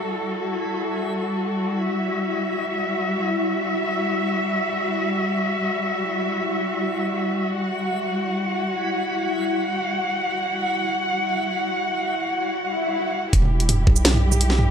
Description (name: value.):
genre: half-time drum and bass.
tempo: free time.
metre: none.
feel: none.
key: E minor.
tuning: A4 = 440 Hz.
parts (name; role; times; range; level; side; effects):
dark symphonic cello section; sustained chords; 0.0-14.7 s; G3 to F#5; -23 LUFS; left 1 dB; sidechain pumping.
backwards swelling texture; texture; 0.0-13.3 s; E4; -30 LUFS; left 1 dB; built-in reverb.
swell; sound effects; 12.7-13.3 s; none; -26 LUFS; left 1 dB; none.
long sustained 808-style bass; bass; 13.3-14.7 s; E1 to B1; -19 LUFS; equal; none.
drum and bass drum kit; drums; 13.3-14.7 s; hi-hat, shaker, snare drum, toms; -21 LUFS; right 1 dB; studio reverb.
electronic kick drum; drums; 13.3-13.9 s; none; -18 LUFS; equal; studio reverb.
room: moderate echo chamber reverb, RT60 1.5 s, digital ambience.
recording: none.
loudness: -21 LUFS.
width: side -8 dB against mid.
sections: 0.0-13.3 A section; 13.3-14.7 B section.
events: swell 12.7-13.3; drop 13.3-14.7.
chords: 0.0 Emadd9; 13.3 Em.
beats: free time.